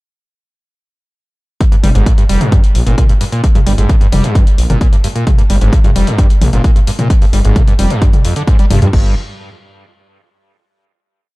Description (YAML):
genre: driving peak-time techno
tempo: 131 BPM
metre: 4/4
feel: straight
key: G phrygian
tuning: A4 = 440 Hz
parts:
  - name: screaming distorted acid line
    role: riff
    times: 1.6-9.1 s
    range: F2 to G3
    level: -17 LUFS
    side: equal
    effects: distortion, analog chorus, sidechain pumping, tape echo
  - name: electronic kick drum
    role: drums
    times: 1.6-9.0 s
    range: none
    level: -10 LUFS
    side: equal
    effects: overdrive
  - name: punchy analog drum machine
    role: drums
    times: 1.6-9.0 s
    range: crash cymbal, hi-hat, toms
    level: -21 LUFS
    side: left 1 dB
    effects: sidechain pumping on hats, sidechain pumping on toms, sidechain pumping on cymbals
  - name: detuned saw bass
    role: bass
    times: 1.8-9.1 s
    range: F1 to G2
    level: -12 LUFS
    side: equal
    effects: tube saturation, sidechain pumping
room: light reverb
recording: dark, warm production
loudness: -9 LUFS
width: side -21 dB against mid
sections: 1.6-8.9 groove; 8.9-10.8 final chord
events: none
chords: 1.6 G5; 8.9 N.C.